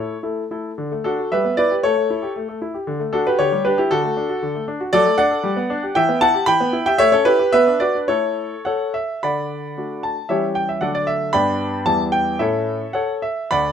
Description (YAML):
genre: classical-period piano sonatina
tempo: 101-119 BPM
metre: 2/4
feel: rubato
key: D major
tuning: A4 = 441 Hz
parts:
  - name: clear grand piano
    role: solo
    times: 0.0-13.7 s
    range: D2 to B5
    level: -17 LUFS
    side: equal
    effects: none
room: light reverb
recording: minimal, uncompressed stereo recording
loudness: -17 LUFS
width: side -8 dB against mid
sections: 0.8-9.2 A section; 9.2-13.7 B section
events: none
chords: 0.0 A; 0.8 D; 1.3 Em/G; 1.8 A7; 2.9 D; 3.4 G5/D; 3.9 D; 4.9 D/F#; 5.4 G; 6.0 Em; 7.0 A7; 7.5 Bm; 8.1 A; 9.2 D; 10.3 C#dim/E; 10.8 D; 11.3 G; 11.9 Em; 12.4 A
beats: 0.22 | 0.77 1.31 | 1.83 2.35 | 2.87 3.38 | 3.90 4.42 | 4.92 5.43 | 5.95 6.47 | 6.99 7.53 | 8.09 8.65 | 9.23 9.78 | 10.30 10.82 | 11.33 11.86 | 12.40 12.95 | 13.51